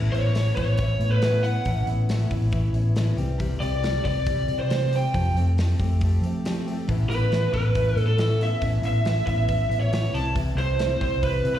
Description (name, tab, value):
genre	folk rock and heartland rock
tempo	138 BPM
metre	4/4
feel	straight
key	unclear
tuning	A4 = 441 Hz
part	picked steel-string acoustic guitar	accompaniment	0.0-11.6 s	A2 to G4	-30 LUFS	left 3 dB	slapback echo
part	hollow-body short-scale fingered electric bass	bass	0.0-11.6 s	A1 to F3	-23 LUFS	equal	none
part	lead guitar through a small cranked amp	melody	0.1-11.6 s	A4 to A5	-26 LUFS	right 2 dB	overdrive, slapback echo
part	natural country drum kit	drums	0.1-11.5 s	hi-hat, kick drum, snare drum	-30 LUFS	equal	none
room	light reverb, studio reverb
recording	live gig heard through the venue's PA, recital hall reverb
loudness	-21 LUFS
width	side -11 dB against mid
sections	0.0-11.6 A section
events	none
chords	0.0 Aadd9; 3.2 C; 5.1 Fadd9; 6.9 Aadd9; 10.1 C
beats	0.34 0.78 1.22 | 1.65 2.09 2.52 2.96 | 3.39 3.83 4.26 4.70 | 5.13 5.57 6.00 6.44 | 6.88 7.31 7.75 8.18 | 8.62 9.05 9.49 9.92 | 10.36 10.79 11.23